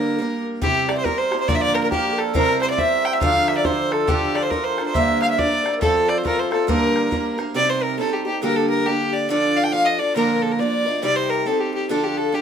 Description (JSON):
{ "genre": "celtic folk, Celtic polka", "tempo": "138 BPM", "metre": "2/4", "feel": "swing 62% on 8ths", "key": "G dorian, C dorian from 7.6 s", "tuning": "A4 = 440 Hz", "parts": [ { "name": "rich fiddle", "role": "melody", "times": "0.0-12.4 s", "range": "G4 to G5", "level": "-21 LUFS", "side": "equal", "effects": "none" }, { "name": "mellow hollow wooden flute", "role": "second line", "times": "0.0-12.4 s", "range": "G4 to A5", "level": "-28 LUFS", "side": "left 4 dB", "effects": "none" }, { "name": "picked steel-string acoustic guitar", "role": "accompaniment", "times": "0.0-12.4 s", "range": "G2 to C5", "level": "-23 LUFS", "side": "right 1 dB", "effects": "none" }, { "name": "hammered dulcimer", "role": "second line", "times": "0.6-9.5 s", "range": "G4 to G5", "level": "-28 LUFS", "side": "right 6 dB", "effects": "none" }, { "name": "bodhran", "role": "percussion", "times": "0.6-7.5 s", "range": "none", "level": "-27 LUFS", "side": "left 2 dB", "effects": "none" } ], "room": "moderate studio reverb, RT60 0.9 s", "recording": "minimal, uncompressed stereo recording, faint mains hum", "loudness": "-18 LUFS", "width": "side -8 dB against mid", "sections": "0.6-7.6 A section; 7.6-12.4 B section", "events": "none", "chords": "0.0 Gm; 0.6 C; 1.5 Bb; 2.4 C; 3.2 Dm; 5.0 Gm; 5.8 F; 6.7 Gm; 7.6 Cm; 8.4 Gm; 9.3 Dm; 10.2 Bb; 11.0 Cm; 11.9 Dm" }